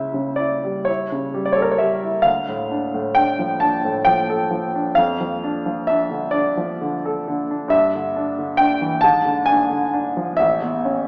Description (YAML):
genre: classical, romantic nocturne for solo piano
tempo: 44 BPM (dotted quarters)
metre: 6/8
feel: rubato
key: D minor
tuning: A4 = 435 Hz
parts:
  - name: clear baby grand piano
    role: solo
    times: 0.0-11.1 s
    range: A1 to A5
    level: -17 LUFS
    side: equal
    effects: none
room: wet recital hall reverb, RT60 1.5 s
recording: recorded in a church or concert hall, small speaker sound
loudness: -17 LUFS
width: side -38 dB against mid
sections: 0.0-11.1 A section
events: none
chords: 0.0 A7/C#; 2.3 Dm; 5.0 Dm/F; 7.7 Em7/G; 9.0 Ddim/Ab; 10.4 A